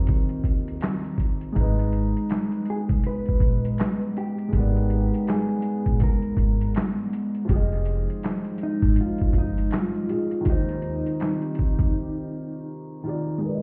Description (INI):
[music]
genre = lo-fi hip hop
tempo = 81 BPM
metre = 4/4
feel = swing 62% on 16ths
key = Eb major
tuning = A4 = 439 Hz
[part]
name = mellow electric guitar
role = melody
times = 0.0-12.7 s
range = Eb4 to Cb5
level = -35 LUFS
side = equal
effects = low-pass filter, slapback echo
[part]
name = felt-muted upright piano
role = accompaniment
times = 0.0-13.6 s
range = Eb3 to Eb5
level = -33 LUFS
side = equal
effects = low-pass filter
[part]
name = dark analog pad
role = sustained chords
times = 0.0-13.4 s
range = Eb3 to G4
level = -32 LUFS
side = equal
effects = chorus, low-pass filter
[part]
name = upright bass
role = bass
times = 0.0-11.9 s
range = F1 to F2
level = -28 LUFS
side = equal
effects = none
[part]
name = lo-fi sampler-style drum kit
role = drums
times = 0.1-11.9 s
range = handclaps, hi-hat, kick drum, snare drum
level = -26 LUFS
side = equal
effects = none
[part]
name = tube shaker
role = percussion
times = 1.6-11.9 s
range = none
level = barely audible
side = none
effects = none
[sound]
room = light reverb, small room ambience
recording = heard muffled through a wall, stone room reverb, EQ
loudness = -24 LUFS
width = mono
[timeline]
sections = 0.0-13.4 A section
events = break 11.9-13.4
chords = 0.0 Eb6; 1.6 Abmadd9; 7.5 Fm7; 10.5 Eb6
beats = 0.08 0.82 | 1.56 2.31 3.05 3.79 | 4.53 5.27 6.01 6.75 | 7.49 8.23 8.97 9.71 | 10.45 11.19 11.94 12.68 | 13.42